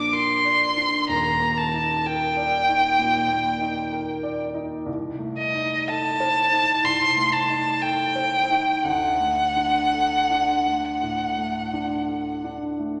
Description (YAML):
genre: classical, romantic duo for violin and grand piano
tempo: 54-65 BPM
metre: 4/4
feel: rubato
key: unclear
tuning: A4 = 442 Hz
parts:
  - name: rich violin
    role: melody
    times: 0.0-12.6 s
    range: Eb5 to D6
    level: -23 LUFS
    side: equal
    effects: none
  - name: warm baby grand piano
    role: accompaniment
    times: 0.0-13.0 s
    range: Eb1 to D5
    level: -30 LUFS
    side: equal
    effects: none
room: wet scoring stage reverb, RT60 1.7 s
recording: none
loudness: -23 LUFS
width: mono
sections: 0.0-13.0 A section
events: none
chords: 0.0 Bb; 1.1 Ebmaj7; 4.9 Adim/C; 8.9 D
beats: 0.14 | 1.10 2.06 2.99 3.92 | 4.87 5.89 6.85 7.82 | 8.85 9.94 11.03 12.07